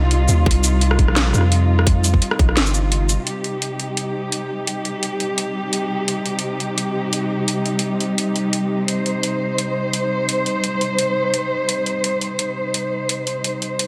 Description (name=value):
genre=half-time drum and bass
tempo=171 BPM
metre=4/4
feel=swing 54% on 16ths, half-time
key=C minor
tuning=A4 = 442 Hz
part: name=dark studio cello section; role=sustained chords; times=0.0-13.9 s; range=C3 to C5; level=-24 LUFS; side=equal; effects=vintage 12-bit sampler grit, sidechain pumping
part: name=long sustained 808-style bass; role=bass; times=0.0-3.2 s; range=G1 to F2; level=-19 LUFS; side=equal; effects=tube saturation
part: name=drum and bass drum kit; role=drums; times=0.1-13.9 s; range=hi-hat, rim click, shaker, snare drum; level=-24 LUFS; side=equal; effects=none
part: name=electronic kick drum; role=drums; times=0.5-2.5 s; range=none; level=-19 LUFS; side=equal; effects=none
room=moderate echo chamber reverb, RT60 1.8 s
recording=none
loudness=-20 LUFS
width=mono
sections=0.0-3.3 A section; 3.3-13.9 B section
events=drop 0.0-3.3; kick drops out 2.9-3.3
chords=0.0 Cm